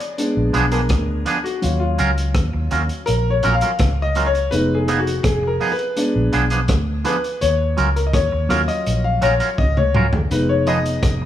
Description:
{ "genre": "lovers rock reggae", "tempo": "83 BPM", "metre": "4/4", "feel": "straight", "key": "Eb minor", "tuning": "A4 = 441 Hz", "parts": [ { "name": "warm grand piano", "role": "accompaniment", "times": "0.0-11.3 s", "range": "Gb3 to F5", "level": "-21 LUFS", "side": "left 2 dB", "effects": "none" }, { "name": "crunchy breakbeat drum kit", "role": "drums", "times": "0.0-11.2 s", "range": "hi-hat, kick drum, rim click, toms", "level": "-23 LUFS", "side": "equal", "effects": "none" }, { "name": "vintage muted fingered electric bass", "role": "bass", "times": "0.4-11.3 s", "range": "F1 to Eb2", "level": "-20 LUFS", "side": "equal", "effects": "none" }, { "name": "twangy electric guitar", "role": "stabs", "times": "0.5-11.3 s", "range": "F3 to Bb4", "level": "-24 LUFS", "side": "right 4 dB", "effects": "phaser" } ], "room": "light reverb, studio ambience", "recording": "studio reverb", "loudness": "-16 LUFS", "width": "side -11 dB against mid", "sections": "0.0-11.3 A section", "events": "grand piano solo 0.0-11.3; drum fill 9.6-10.3", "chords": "0.2 Bb7b9; 1.6 Ebm9; 4.5 Fm7b5; 6.0 Bb7b9 (rootless); 7.4 Ebm9; 10.3 Fm7b5" }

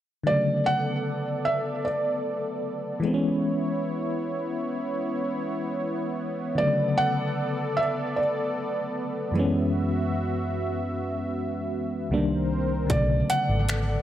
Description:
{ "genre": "contemporary R&B", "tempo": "76 BPM", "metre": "4/4", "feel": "straight", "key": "B dorian", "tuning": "A4 = 442 Hz", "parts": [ { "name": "FM electric piano with auto-pan", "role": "accompaniment", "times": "0.2-14.0 s", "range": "C2 to D4", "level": "-28 LUFS", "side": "left 1 dB", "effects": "none" }, { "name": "felt-muted upright piano", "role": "melody", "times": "0.3-14.0 s", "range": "D5 to F#5", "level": "-27 LUFS", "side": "right 1 dB", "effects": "tape echo" }, { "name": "warm analog pad", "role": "sustained chords", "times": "0.3-14.0 s", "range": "B3 to E5", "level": "-30 LUFS", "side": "right 1 dB", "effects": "chorus, sidechain pumping" }, { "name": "vintage muted fingered electric bass", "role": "bass", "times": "12.9-14.0 s", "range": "G#1 to B1", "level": "-25 LUFS", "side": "equal", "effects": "none" }, { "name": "trap drum kit", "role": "drums", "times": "12.9-13.9 s", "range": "finger snaps, hi-hat, kick drum", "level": "-29 LUFS", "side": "equal", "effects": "none" } ], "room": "moderate lush hall reverb, RT60 1.9 s, digital ambience", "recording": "none", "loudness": "-24 LUFS", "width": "side -12 dB against mid", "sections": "0.3-14.0 A section", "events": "none", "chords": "0.3 Bm7; 3.0 C#m7; 6.6 Bm7; 9.3 F#7sus4; 12.1 Cm7; 12.9 Bm7" }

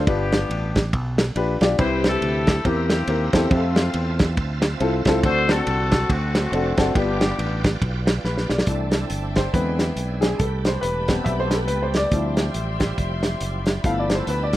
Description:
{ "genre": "uptempo gospel", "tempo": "139 BPM", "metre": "4/4", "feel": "swing 59% on 8ths", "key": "C major", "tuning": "A4 = 440 Hz", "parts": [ { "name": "mellow horn section", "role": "melody", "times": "0.0-7.8 s", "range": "A3 to C5", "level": "-25 LUFS", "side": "left 2 dB", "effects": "none" }, { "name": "fingered electric bass", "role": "bass", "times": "0.0-14.6 s", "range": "E1 to F2", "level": "-25 LUFS", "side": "right 1 dB", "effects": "none" }, { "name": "clear grand piano", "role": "accompaniment", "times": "0.1-14.6 s", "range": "G2 to F5", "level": "-24 LUFS", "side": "left 2 dB", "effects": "plate reverb" }, { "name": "warm soul drum kit", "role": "drums", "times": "0.1-14.6 s", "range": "hi-hat, kick drum, ride cymbal, snare drum", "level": "-22 LUFS", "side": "right 1 dB", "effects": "none" }, { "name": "bright tonewheel organ", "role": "sustained chords", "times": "1.8-14.6 s", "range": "F3 to B5", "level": "-33 LUFS", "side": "right 4 dB", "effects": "slow rotary speaker, overdrive, chorus vibrato" }, { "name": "dark studio string section", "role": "sustained chords", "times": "8.7-14.6 s", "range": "B4 to C6", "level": "-33 LUFS", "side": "left 2 dB", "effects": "none" } ], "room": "light reverb", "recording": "rough home demo mix", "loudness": "-19 LUFS", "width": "side -15 dB against mid", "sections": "0.0-8.7 A section; 8.7-14.6 B section", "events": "drum fill 8.2-8.7; grand piano solo 8.7-14.6", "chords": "0.1 G7; 1.8 Cmaj7; 2.7 C7/E; 3.5 Fmaj7; 5.2 D7; 7.0 G7; 8.7 C69; 9.5 E7b13; 10.4 Am9; 12.1 Dm11; 13.8 G13" }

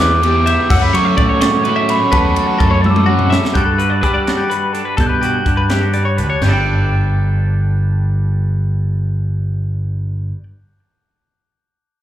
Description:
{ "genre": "math rock and midwest emo", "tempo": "84 BPM (dotted quarters)", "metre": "6/8", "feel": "straight", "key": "G lydian", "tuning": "A4 = 440 Hz", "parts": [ { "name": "glockenspiel with rubber mallets", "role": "melody", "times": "0.0-10.3 s", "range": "A5 to A6", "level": "-19 LUFS", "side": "right 1 dB", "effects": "slapback echo, analog delay" }, { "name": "twelve-string electric guitar", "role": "arpeggios", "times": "0.0-10.4 s", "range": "F#4 to G5", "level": "-21 LUFS", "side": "left 6 dB", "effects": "tremolo, slapback echo, analog delay" }, { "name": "crunchy overdriven guitar", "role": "riff", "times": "0.0-3.6 s", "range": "E3 to G4", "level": "-18 LUFS", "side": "right 2 dB", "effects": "slapback echo" }, { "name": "growling fingered electric bass", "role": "bass", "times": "0.0-10.3 s", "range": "G1 to G3", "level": "-16 LUFS", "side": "equal", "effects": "overdrive" }, { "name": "crisp fusion drum kit", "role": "drums", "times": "0.0-6.5 s", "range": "crash cymbal, hi-hat, kick drum, ride cymbal, snare drum, toms", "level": "-19 LUFS", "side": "equal", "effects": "none" }, { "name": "twangy electric guitar", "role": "accompaniment", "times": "3.5-10.4 s", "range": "G2 to A4", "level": "-24 LUFS", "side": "right 7 dB", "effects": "slapback echo" } ], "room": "little or no reverb", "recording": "live gig heard through the venue's PA, club reverb", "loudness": "-13 LUFS", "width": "side -12 dB against mid", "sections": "0.0-3.6 A section; 3.6-6.4 B section; 6.4-9.3 C section", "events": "drum fill 2.8-3.6", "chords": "0.0 Em7; 0.7 F#m7; 3.6 Gmaj9; 6.4 Gsus2" }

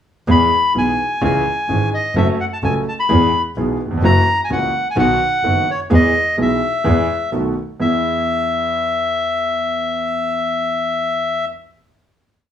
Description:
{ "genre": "tango", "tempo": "128 BPM", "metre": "4/4", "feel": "rubato", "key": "E major", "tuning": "A4 = 440 Hz", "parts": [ { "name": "bandoneon", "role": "melody", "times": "0.3-11.5 s", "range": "C#5 to B5", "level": "-18 LUFS", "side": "left 2 dB", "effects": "none" }, { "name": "clear concert grand piano", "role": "accompaniment", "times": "0.3-11.4 s", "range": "F#1 to A4", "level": "-20 LUFS", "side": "right 1 dB", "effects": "none" }, { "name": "clear double bass", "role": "bass", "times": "0.3-8.0 s", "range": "F#1 to E2", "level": "-19 LUFS", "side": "equal", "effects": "none" } ], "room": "light reverb", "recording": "studio ambience", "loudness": "-15 LUFS", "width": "side -9 dB against mid", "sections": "0.3-7.8 A section; 7.8-11.5 final chord", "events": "none", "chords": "0.3 E; 1.2 C#m; 2.2 F#m; 3.1 E; 4.0 F#7; 5.0 B; 5.9 E; 7.3 B7; 7.8 E" }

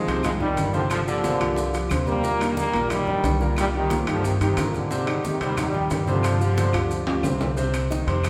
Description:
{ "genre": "latin, salsa", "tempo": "180 BPM", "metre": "4/4", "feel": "straight", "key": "C minor", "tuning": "A4 = 440 Hz", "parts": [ { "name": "bright trombone section", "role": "melody", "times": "0.0-7.2 s", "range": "Ab2 to Bb3", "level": "-28 LUFS", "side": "equal", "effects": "none" }, { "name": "clear concert grand piano", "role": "accompaniment", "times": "0.1-8.3 s", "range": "Bb2 to Eb5", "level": "-29 LUFS", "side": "equal", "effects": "none" }, { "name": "upright bass", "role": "bass", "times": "0.1-8.3 s", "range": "G1 to G2", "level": "-29 LUFS", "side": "equal", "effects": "none" }, { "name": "bongos", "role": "percussion", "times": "0.1-8.3 s", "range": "none", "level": "-38 LUFS", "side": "equal", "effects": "none" }, { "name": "congas", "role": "percussion", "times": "0.1-8.3 s", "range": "none", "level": "-34 LUFS", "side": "equal", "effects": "none" }, { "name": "maracas", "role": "percussion", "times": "0.1-8.3 s", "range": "none", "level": "-44 LUFS", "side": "equal", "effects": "none" }, { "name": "timbales", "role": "percussion", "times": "0.1-8.3 s", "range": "none", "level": "-35 LUFS", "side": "equal", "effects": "none" }, { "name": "claves", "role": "percussion", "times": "0.2-8.3 s", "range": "none", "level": "-45 LUFS", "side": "equal", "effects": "none" } ], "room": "wet recital hall reverb, RT60 1.5 s", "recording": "recorded in a church or concert hall", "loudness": "-23 LUFS", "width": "mono", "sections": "0.0-7.6 A section", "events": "drum fill 6.7-7.6", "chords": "0.0 Ab6; 2.2 Ebmaj7; 3.6 Cm7; 4.9 Abmaj7; 6.2 G7sus4; 7.6 Cm" }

